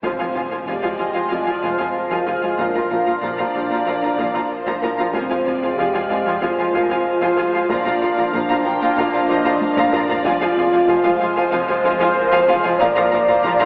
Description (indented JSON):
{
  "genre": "cinematic, hybrid orchestral and electronic film score",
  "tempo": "94 BPM",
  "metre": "4/4",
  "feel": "straight",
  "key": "F dorian",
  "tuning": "A4 = 442 Hz",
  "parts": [
    { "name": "warm symphonic violin section", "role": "melody", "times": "0.0-13.7 s", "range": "Ab4 to G5", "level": "-30 LUFS", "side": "equal", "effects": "none" },
    { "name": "bright symphonic violin section", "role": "second line", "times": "0.0-13.7 s", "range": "F5 to Bb5", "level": "-27 LUFS", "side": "equal", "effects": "none" },
    { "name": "warm symphonic viola section", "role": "accompaniment", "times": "0.0-13.7 s", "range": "F3 to F4", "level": "-26 LUFS", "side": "equal", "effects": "none" },
    { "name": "mellow French horn section", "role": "sustained chords", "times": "0.0-13.7 s", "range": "C4 to D5", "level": "-24 LUFS", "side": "equal", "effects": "none" },
    { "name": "sweeping resonant pad", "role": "sustained chords", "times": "0.0-13.7 s", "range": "F3 to F5", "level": "-26 LUFS", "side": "equal", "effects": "chorus" },
    { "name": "thumb-piano-like synth pluck", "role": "arpeggios", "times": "0.0-13.7 s", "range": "F3 to Bb4", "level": "-34 LUFS", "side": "equal", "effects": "none" },
    { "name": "rich symphonic cello section", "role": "bass", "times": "0.0-13.7 s", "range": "F2 to Bb2", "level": "-34 LUFS", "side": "equal", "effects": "none" },
    { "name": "rich symphonic double bass section", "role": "bass", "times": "0.0-13.5 s", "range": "F1 to Bb1", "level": "-39 LUFS", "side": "equal", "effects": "none" },
    { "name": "warm sub bass", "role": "bass", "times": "0.0-13.7 s", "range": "F1 to Bb1", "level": "-53 LUFS", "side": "equal", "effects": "none" },
    { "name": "taiko ensemble", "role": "drums", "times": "0.0-13.7 s", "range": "none", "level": "-36 LUFS", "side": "equal", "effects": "none" },
    { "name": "impact", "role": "sound effects", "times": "0.0-2.6 s", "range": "none", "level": "-43 LUFS", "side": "equal", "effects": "none" }
  ],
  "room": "wet scoring stage reverb, RT60 1.7 s",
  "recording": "heard from further back in the room, telephone sound",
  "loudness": "-19 LUFS",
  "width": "mono",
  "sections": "0.0-13.7 A section",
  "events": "impact 0.0-2.6; drum fill 9.6-10.3",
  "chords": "0.0 Fm; 2.6 Bb; 5.1 Fm; 7.7 Bb; 10.3 Fm; 12.8 Bb",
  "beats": "| 0.04 0.68 1.31 1.95 | 2.59 3.23 3.87 4.51 | 5.14 5.78 6.42 7.06 | 7.70 8.34 8.97 9.61 | 10.25 10.89 11.53 12.17 | 12.80 13.44"
}